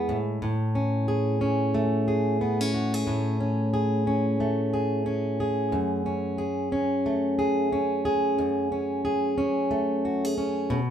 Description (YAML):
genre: pop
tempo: 90 BPM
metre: 4/4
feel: swing 60% on 16ths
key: unclear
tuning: A4 = 440 Hz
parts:
  - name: fingerpicked plugged-in steel-string acoustic guitar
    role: solo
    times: 0.0-10.9 s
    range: F#2 to G#4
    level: -23 LUFS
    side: equal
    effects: none
room: moderate studio reverb, RT60 0.5 s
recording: band playing live in one room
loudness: -23 LUFS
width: side -9 dB against mid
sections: 0.0-10.9 A section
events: none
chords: 0.1 Amaj7; 5.7 F#madd9